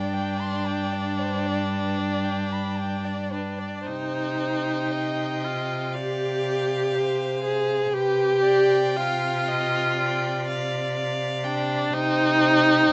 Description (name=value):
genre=classical, slow romantic movement for string quartet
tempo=56-62 BPM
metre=4/4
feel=rubato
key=C minor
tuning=A4 = 440 Hz
part: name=clear violin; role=melody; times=0.0-12.9 s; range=F5 to G5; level=-36 LUFS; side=equal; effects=none
part: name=dark violin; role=second line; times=0.0-12.9 s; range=B4 to C6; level=-34 LUFS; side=equal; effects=none
part: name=rich viola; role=accompaniment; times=0.0-12.9 s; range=D4 to Ab4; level=-26 LUFS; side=equal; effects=none
part: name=rich cello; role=bass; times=0.0-12.9 s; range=G2 to C3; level=-32 LUFS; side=equal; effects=none
room=light reverb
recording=nothing above 7.9 kHz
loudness=-25 LUFS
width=mono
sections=0.0-12.9 A section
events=none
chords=0.0 Gsus4; 3.9 Cm; 7.9 G7(no3)/C; 11.9 Cm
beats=0.67 1.73 2.79 | 3.87 4.93 5.94 6.94 | 7.94 8.97 9.98 10.96 | 11.94 12.92